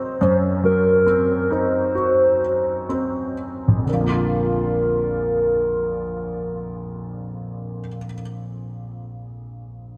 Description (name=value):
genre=pop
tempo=59-72 BPM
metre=4/4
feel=straight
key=unclear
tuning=A4 = 442 Hz
part: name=hollow clarinet-like synth lead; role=melody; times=0.0-8.0 s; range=Bb4 to C5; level=-23 LUFS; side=equal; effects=chorus
part: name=warm concert grand piano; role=accompaniment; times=0.0-10.0 s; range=Bb1 to Gb4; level=-26 LUFS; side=equal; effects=ensemble chorus
room=moderate plate reverb, RT60 3.1 s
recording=bright 1980s-style digital production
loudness=-20 LUFS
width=mono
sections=0.0-3.9 A section; 3.9-7.9 B section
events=slowing down 0.0-3.9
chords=0.0 Cdim; 3.9 Bb